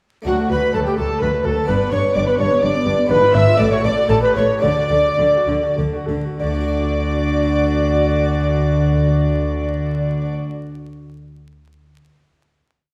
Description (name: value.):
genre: classical, baroque-style concerto movement with solo episodes.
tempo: 94-128 BPM.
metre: 3/4.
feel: straight.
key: D major.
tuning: A4 = 441 Hz.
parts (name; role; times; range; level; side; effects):
harpsichord; accompaniment; 0.2-10.6 s; D2 to D5; -28 LUFS; equal; none.
alto recorder; melody; 0.3-10.3 s; F#4 to E5; -22 LUFS; equal; none.
rich chamber violin section; melody; 0.3-10.3 s; F#5 to E6; -32 LUFS; equal; none.
warm chamber violin section; second line; 0.3-10.3 s; F#4 to E5; -25 LUFS; equal; none.
dark chamber viola section; accompaniment; 0.3-10.4 s; F#3 to A4; -30 LUFS; equal; none.
dark chamber cello section; bass; 0.3-10.3 s; D2 to D3; -26 LUFS; equal; none.
dark studio double bass section; bass; 0.3-10.3 s; G1 to D2; -24 LUFS; equal; none.
room: wet recital hall reverb, RT60 1.5 s.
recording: heard from further back in the room, vinyl crackle.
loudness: -18 LUFS.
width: mono.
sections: 0.3-6.4 ritornello; 6.4-10.2 final chord.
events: slowing down 2.4-6.4.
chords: 0.3 D; 1.7 G; 3.1 G#dim7; 3.6 D/A; 4.1 A7; 4.6 D.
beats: | 0.26 0.74 1.21 | 1.69 2.16 2.63 | 3.10 3.59 4.10 | 4.63 5.19 5.78 | 6.40 7.03 7.67 | 8.31 8.95 9.59.